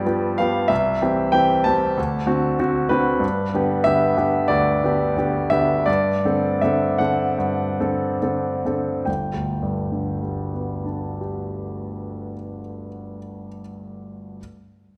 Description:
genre	classical, romantic character piece for solo piano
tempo	65-97 BPM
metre	4/4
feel	rubato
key	G major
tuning	A4 = 439 Hz
part	bright grand piano	solo	0.0-14.4 s	G1 to A5	-22 LUFS	equal	none
room	wet recital hall reverb, RT60 1.6 s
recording	none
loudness	-21 LUFS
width	mono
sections	0.0-9.1 A section; 9.1-12.1 B section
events	slowing down 2.0-9.1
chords	0.0 G7; 0.7 C; 2.0 D7; 3.2 G; 5.9 D7/G; 9.1 G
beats	0.05 | 0.70 1.34 1.97 2.59 | 3.22 3.85 4.50 5.17 | 5.87 6.62 7.39 8.22 | 9.07 9.83 10.59 11.36

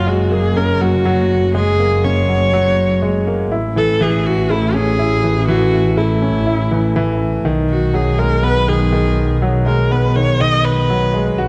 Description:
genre	piano and strings electronica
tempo	122 BPM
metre	4/4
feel	straight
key	unclear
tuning	A4 = 440 Hz
part	warm viola	melody	0.0-11.4 s	E4 to D#5	-21 LUFS	equal	none
part	warm grand piano	riff	0.0-11.5 s	D#3 to F#4	-20 LUFS	equal	none
part	warm studio double bass section	bass	0.0-11.5 s	F#1 to B1	-20 LUFS	equal	none
room	moderate recital hall reverb, RT60 1.6 s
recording	dark, warm production, nothing above 10.5 kHz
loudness	-16 LUFS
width	mono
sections	0.0-11.5 A section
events	none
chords	0.0 F#add9; 3.5 A; 7.4 G#m7/B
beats	0.07 0.56 1.06 | 1.55 2.04 2.53 3.02 | 3.52 4.01 4.50 4.99 | 5.48 5.97 6.47 6.96 | 7.45 7.94 8.43 8.93 | 9.42 9.91 10.40 10.89 | 11.38

